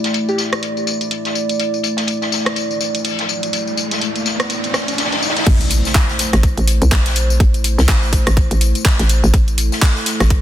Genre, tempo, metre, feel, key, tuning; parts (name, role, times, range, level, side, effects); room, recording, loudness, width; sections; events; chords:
bass house; 124 BPM; 4/4; swing 58% on 16ths; A minor; A4 = 440 Hz
dark analog pad; sustained chords; 0.0-10.4 s; A3 to D5; -23 LUFS; right 1 dB; chorus, sidechain pumping
garage drum kit; drums; 0.0-10.4 s; crash cymbal, handclaps, hi-hat, rim click, tambourine; -21 LUFS; left 1 dB; overdrive, low-pass filter on perc, low-pass filter on hats, low-pass filter on snare, low-pass filter on cymbals
open jazz drum kit; drums; 0.0-10.4 s; hi-hat, snare drum; -25 LUFS; left 3 dB; sidechain pumping on hats, high-pass filter on hats, low-pass filter on hats, soft clipping on snare, high-pass filter on snare, low-pass filter on snare, high-pass filter on room, low-pass filter on room
riser and impact; sound effects; 2.7-7.4 s; -24 LUFS; equal
hollow knocking FM bass; bass; 5.5-10.4 s; A1 to C2; -15 LUFS; equal; sidechain pumping
electronic kick drum; drums; 5.5-10.4 s; -14 LUFS; equal; overdrive
light reverb, digital ambience; dense, heavily limited modern master; -14 LUFS; side -12 dB against mid
0.0-5.5 A section; 5.5-10.4 B section
riser 2.7-5.5; drop 5.5-10.4; impact 5.5-7.4
0.0 A5; 5.5 Am